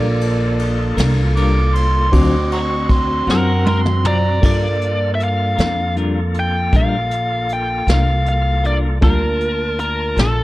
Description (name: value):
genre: slow blues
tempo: 52 BPM (dotted quarters)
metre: 12/8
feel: straight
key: G minor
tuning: A4 = 440 Hz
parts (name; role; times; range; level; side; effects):
- overdriven harmonica; second line; 0.0-4.4 s; D5 to D6; -23 LUFS; right 3 dB; plate reverb, tape echo
- clean electric guitar; accompaniment; 0.0-10.4 s; D3 to Bb4; -23 LUFS; left 4 dB; tremolo
- warm upright piano; accompaniment; 0.0-10.4 s; Bb3 to A5; -27 LUFS; right 3 dB; none
- bright tonewheel organ; sustained chords; 0.0-10.4 s; Bb3 to A5; -25 LUFS; equal; slow rotary speaker
- upright bass; bass; 0.0-10.4 s; Bb1 to G2; -18 LUFS; equal; none
- vintage brush drum kit; drums; 0.2-10.4 s; crash cymbal, hi-hat, kick drum, ride cymbal, snare drum, toms; -20 LUFS; equal; none
- biting lead guitar; melody; 3.3-10.4 s; A4 to G5; -21 LUFS; left 1 dB; overdrive, plate reverb
room: light reverb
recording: none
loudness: -14 LUFS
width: side -17 dB against mid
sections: 0.0-4.4 A section; 4.4-10.4 B section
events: harmonica solo 0.0-4.4; drum fill 3.3-4.4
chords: 0.0 Gm7 (rootless); 2.1 D7#9; 4.4 Gm7